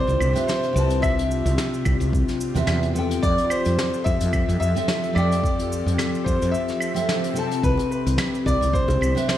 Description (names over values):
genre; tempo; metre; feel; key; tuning
sunset chillout; 109 BPM; 4/4; swing 55% on 16ths; C major; A4 = 440 Hz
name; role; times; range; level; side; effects
clear baby grand piano; melody; 0.0-9.4 s; B4 to E5; -26 LUFS; equal; tape echo
nylon-string guitar; accompaniment; 0.0-9.4 s; C3 to A5; -26 LUFS; moving between left 7 dB and right 3 dB; auto-pan, tape echo
airy breathy pad; sustained chords; 0.0-9.4 s; C3 to A4; -30 LUFS; left 2 dB; chorus
woody fretless electric bass; bass; 0.0-9.1 s; C2 to F2; -23 LUFS; equal; none
vintage brush drum kit; drums; 0.1-9.4 s; cabasa, claves, hi-hat, snare drum; -29 LUFS; equal; none
electronic kick drum; drums; 1.0-8.9 s; none; -25 LUFS; equal; none
swell; sound effects; 6.7-7.6 s; none; -35 LUFS; right 2 dB; none
bongos; percussion; 7.8-9.0 s; none; -36 LUFS; left 4 dB; none
room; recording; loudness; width
light reverb, small room ambience; played on a big sound system in a bare room, stone room reverb; -19 LUFS; side -12 dB against mid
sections
0.0-9.4 A section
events
swell 6.7-7.6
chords
0.0 Cmaj7; 3.2 Fmaj7; 7.6 Cmaj7(no3)